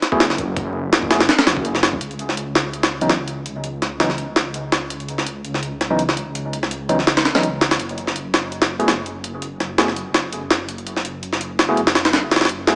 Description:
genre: drum and bass, jungle.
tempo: 166 BPM.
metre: 4/4.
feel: swing 54% on 16ths.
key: unclear.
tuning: A4 = 444 Hz.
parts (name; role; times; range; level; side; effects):
jungle sampler-style drum kit; drums; 0.0-12.8 s; hi-hat, kick drum, snare drum; -20 LUFS; equal; high-pass filter on kick, studio reverb, high-pass filter on snare, high-pass filter on hats.
overdriven tine electric piano; stabs; 0.1-12.8 s; E3 to G#4; -26 LUFS; equal; low-pass filter, dub echo.
detuned saw bass; bass; 0.2-12.8 s; F#1 to C#2; -31 LUFS; equal; none.
room: light reverb, digital ambience.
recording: vinyl crackle, small speaker sound.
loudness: -20 LUFS.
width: mono.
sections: 0.0-2.0 A section; 2.0-12.8 B section.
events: drop 0.0-2.0.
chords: none.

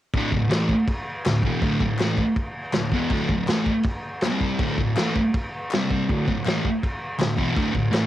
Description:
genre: garage rock duo or trio.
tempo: 161 BPM.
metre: 4/4.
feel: straight.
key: unclear.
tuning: A4 = 440 Hz.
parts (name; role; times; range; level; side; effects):
vintage drum kit; drums; 0.1-8.0 s; crash cymbal, kick drum, snare drum; -25 LUFS; equal; cassette tape.
thick fuzz guitar; riff; 0.2-8.1 s; D2 to C4; -22 LUFS; equal; distortion, cassette tape.
group handclap; percussion; 0.5-8.0 s; none; -35 LUFS; left 7 dB; none.
room: light reverb.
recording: home recording on cassette.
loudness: -21 LUFS.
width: side -13 dB against mid.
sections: 0.1-8.1 A section.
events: none.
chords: 0.1 D5; 4.2 C5; 4.6 D5; 5.7 C5; 6.1 D5.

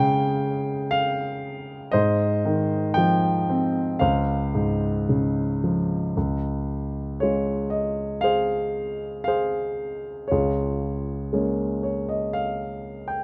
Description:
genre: classical, lyrical solo piano.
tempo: 55-61 BPM.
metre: 4/4.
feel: rubato.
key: Db lydian.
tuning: A4 = 440 Hz.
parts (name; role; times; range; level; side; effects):
warm grand piano; solo; 0.0-13.2 s; Db2 to Ab5; -24 LUFS; equal; none.
room: light reverb.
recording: close, detailed microphones.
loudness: -25 LUFS.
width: mono.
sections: 0.0-6.2 A section; 6.2-13.2 B section.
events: grand piano fill 11.3-13.2.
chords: 0.0 Db; 1.9 Ab6; 4.0 Dbmaj7; 10.3 Bbm7/Db.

